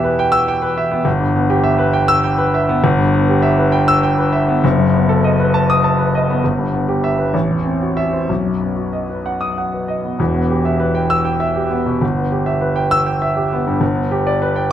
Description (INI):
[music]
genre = classical, virtuoso piano study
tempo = 67 BPM (dotted quarters)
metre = 6/8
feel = rubato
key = E minor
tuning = A4 = 440 Hz
[part]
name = warm grand piano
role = solo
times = 0.0-14.7 s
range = E1 to E6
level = -14 LUFS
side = equal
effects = none
[sound]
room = moderate recital hall reverb, RT60 1.6 s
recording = close, detailed microphones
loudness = -14 LUFS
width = side -10 dB against mid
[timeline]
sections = 0.0-10.2 A section; 10.2-14.7 B section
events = none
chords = 0.0 Em; 1.1 Em/G; 4.6 B7/F#; 6.4 Em/G; 7.3 F#m7b5/A; 8.3 B; 10.2 Em; 12.0 Em/G; 13.8 G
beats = 0.18 | 1.06 1.94 | 2.83 3.73 | 4.63 5.52 | 6.42 7.34 | 8.29 9.25 | 10.19 11.11 | 12.02 12.91 | 13.81 14.70